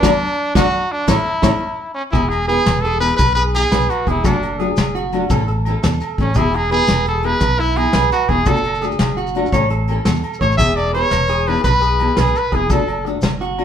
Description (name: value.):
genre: highlife guitar band.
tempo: 114 BPM (dotted quarters).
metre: 12/8.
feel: straight.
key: E mixolydian.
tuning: A4 = 436 Hz.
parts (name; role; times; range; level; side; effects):
brilliant trumpet; melody; 0.0-13.1 s; C#4 to E5; -19 LUFS; equal; none.
nylon-string guitar; accompaniment; 0.0-13.6 s; E3 to A4; -22 LUFS; left 4 dB; none.
electric guitar at the edge of break-up; arpeggios; 0.0-13.6 s; E4 to D5; -21 LUFS; right 3 dB; none.
fingered electric bass; bass; 0.0-13.6 s; E1 to E2; -21 LUFS; equal; none.
soft brush drum kit; drums; 0.0-13.6 s; hi-hat, kick drum, snare drum; -20 LUFS; equal; none.
agogo bells; percussion; 0.0-13.6 s; none; -30 LUFS; right 2 dB; none.
congas; percussion; 0.0-1.5 s; none; -27 LUFS; right 1 dB; none.
shekere; percussion; 0.0-13.3 s; none; -26 LUFS; left 1 dB; none.
room: wet studio reverb, RT60 0.8 s.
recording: band playing live in one room.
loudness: -14 LUFS.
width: side -8 dB against mid.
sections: 0.0-2.1 A section; 2.1-13.6 B section.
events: band accent 0.0-2.1.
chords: 0.0 D; 1.1 A; 2.1 E; 4.3 D/F#; 5.3 A; 6.4 E; 8.5 D/F#; 9.5 A; 10.6 E; 12.7 D/F#.